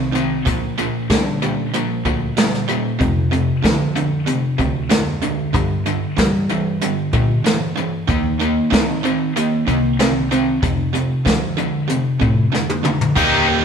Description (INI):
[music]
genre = classic rock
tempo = 94 BPM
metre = 4/4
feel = straight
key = unclear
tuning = A4 = 440 Hz
[part]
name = cranked stack guitar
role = riff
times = 0.0-13.6 s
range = F2 to G4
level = -20 LUFS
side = right 6 dB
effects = overdrive
[part]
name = distorted electric guitar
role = riff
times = 0.0-13.6 s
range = F2 to Eb4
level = -22 LUFS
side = left 8 dB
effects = overdrive
[part]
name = hollow-body short-scale picked electric bass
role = bass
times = 0.0-13.6 s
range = C2 to G3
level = -23 LUFS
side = left 1 dB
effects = none
[part]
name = jazz brush drum kit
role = drums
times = 0.1-13.3 s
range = crash cymbal, hi-hat, kick drum, snare drum, toms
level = -20 LUFS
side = equal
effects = none
[sound]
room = wet stone room reverb, RT60 1.3 s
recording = band playing live in one room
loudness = -16 LUFS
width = side -7 dB against mid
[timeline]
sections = 0.0-13.2 A section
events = drum fill 12.5-13.2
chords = 0.5 Bb/D; 3.0 F5; 5.5 G5; 8.1 Eb5; 10.6 F5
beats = | 0.46 1.10 1.73 2.37 | 3.00 3.64 4.28 4.91 | 5.55 6.18 6.82 7.45 | 8.09 8.72 9.36 9.99 | 10.63 11.26 11.90 12.53 | 13.16